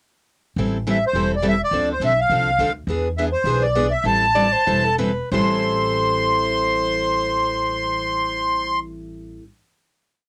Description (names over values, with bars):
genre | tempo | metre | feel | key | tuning
acoustic string swing (jazz manouche) | 177-209 BPM | 4/4 | swing 57% on 8ths | A minor | A4 = 441 Hz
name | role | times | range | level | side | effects
picked steel-string acoustic guitar | accompaniment | 0.6-9.4 s | A2 to A4 | -26 LUFS | equal | none
upright bass | bass | 0.6-9.4 s | E1 to E2 | -30 LUFS | equal | none
accordion | melody | 0.9-8.8 s | C5 to C6 | -22 LUFS | equal | light tremolo tuning, cassette tape
growling soprano saxophone | second line | 4.3-8.8 s | A4 to D5 | -28 LUFS | equal | none
room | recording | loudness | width
moderate booth ambience, RT60 0.2 s | home recording on cassette | -20 LUFS | mono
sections
0.6-5.3 A section; 5.3-8.0 final chord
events
slowing down 2.9-5.3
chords
0.6 Am7; 1.7 Dm7; 2.9 E7; 4.0 Am9; 5.3 Am7